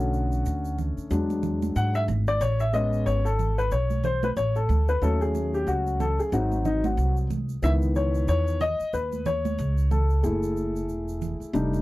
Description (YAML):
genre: hip hop, jazz-hop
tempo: 92 BPM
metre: 4/4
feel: swing 58% on 16ths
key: unclear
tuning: A4 = 440 Hz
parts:
  - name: dark upright piano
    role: accompaniment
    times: 0.0-11.8 s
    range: D3 to F#5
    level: -26 LUFS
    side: left 2 dB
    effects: none
  - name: upright bass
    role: bass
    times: 0.0-11.8 s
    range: E1 to G#2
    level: -25 LUFS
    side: right 1 dB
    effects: none
  - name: egg shaker and congas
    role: percussion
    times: 0.0-11.8 s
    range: none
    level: -34 LUFS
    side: right 7 dB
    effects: none
room: little or no reverb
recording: dry, close 1970s-style studio recording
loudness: -23 LUFS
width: side -18 dB against mid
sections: 0.0-11.8 A section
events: upright piano solo 0.0-11.8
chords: 0.0 Bm7; 1.1 E7; 2.4 Amaj7; 5.0 D#m7b5; 6.3 G#7; 7.6 C#m9; 10.2 F#m7